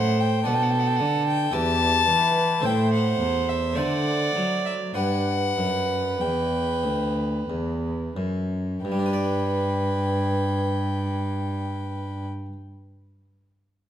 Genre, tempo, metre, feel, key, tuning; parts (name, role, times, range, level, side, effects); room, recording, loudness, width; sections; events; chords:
classical, baroque-style sonata movement with continuo; 44-57 BPM; 3/4; rubato; G major; A4 = 440 Hz
rich violin; melody; 0.0-12.2 s; E5 to A5; -27 LUFS; left 6 dB
warm violin; second line; 0.0-12.2 s; G4 to D5; -28 LUFS; right 4 dB
harpsichord; accompaniment; 0.0-12.5 s; D2 to D5; -30 LUFS; equal
warm cello; bass; 0.0-12.2 s; D2 to F#3; -26 LUFS; right 1 dB
wet large studio reverb, RT60 1.5 s; -22 LUFS; side -10 dB against mid
0.0-8.8 A section; 8.8-12.9 B section
slowing down 0.0-8.8
0.5 Bm; 1.5 Em; 2.6 Am; 3.8 D7; 5.0 G